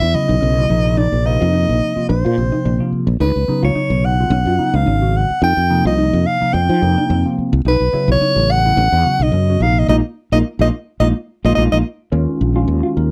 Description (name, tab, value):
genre	jazz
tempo	108 BPM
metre	4/4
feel	swing 55% on 16ths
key	unclear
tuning	A4 = 441 Hz
part	clear soprano saxophone	melody	0.0-11.8 s	Cb5 to G5	-20 LUFS	equal	slapback echo
part	mellow electric guitar	stabs	0.0-13.0 s	Bb3 to F4	-25 LUFS	equal	lush chorus
part	fretless electric bass	bass	0.0-13.1 s	Ab1 to F3	-18 LUFS	equal	none
part	tine electric piano	accompaniment	0.1-13.1 s	C3 to Bb4	-22 LUFS	equal	overdrive, phaser
room	light reverb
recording	dry, close 1970s-style studio recording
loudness	-16 LUFS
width	mono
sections	0.0-12.1 A section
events	band accent 9.9-12.1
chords	0.0 Bsus4; 0.7 Bbsus24; 3.2 Db9sus4; 5.4 F9sus4; 7.7 B9sus4; 9.6 Bb7sus4; 12.1 Eb7sus2